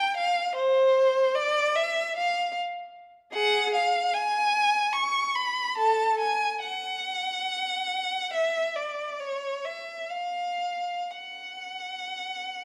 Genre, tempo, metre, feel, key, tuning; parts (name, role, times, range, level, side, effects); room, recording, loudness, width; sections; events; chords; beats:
classical, free, expressive piece for unaccompanied violin; 58-78 BPM; 3/4; rubato; F# minor from 3.3 s; A4 = 443 Hz
rich violin; solo; 0.0-12.6 s; G#4 to C#6; -27 LUFS; equal
moderate recital hall reverb, RT60 1.6 s; dark, warm production; -27 LUFS; mono
0.0-12.6 A section
0.15 | 0.94 1.75 2.56 | 3.34 4.13 4.94 | 5.79 6.62 7.48 | 8.33 9.20 10.10 | 11.09 12.09